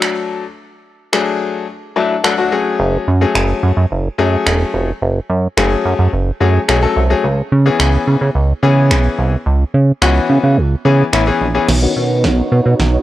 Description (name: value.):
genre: dance-pop.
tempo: 108 BPM.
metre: 4/4.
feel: straight.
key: F# minor.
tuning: A4 = 438 Hz.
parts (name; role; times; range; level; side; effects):
bright grand piano; accompaniment; 0.0-12.7 s; D#3 to A5; -16 LUFS; left 5 dB; low-pass filter, cassette tape.
pop drum kit; drums; 0.0-12.9 s; crash cymbal, finger snaps, snare drum; -19 LUFS; right 2 dB; none.
chorused synth bass; bass; 2.8-13.0 s; E1 to C#3; -13 LUFS; right 2 dB; none.
supersaw chords; sustained chords; 11.7-13.0 s; B3 to C#5; -20 LUFS; right 2 dB; low-pass filter, cassette tape.
room: digital ambience.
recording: home recording on cassette.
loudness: -12 LUFS.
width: side -14 dB against mid.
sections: 0.0-11.7 A section; 11.7-13.0 B section.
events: grand piano fill 1.7-2.8; build-up 11.7-13.0; drum fill 11.7-13.0; filter sweep 11.7-13.0.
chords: 0.0 D; 2.5 F#madd9; 7.2 C#m7; 11.7 Badd9.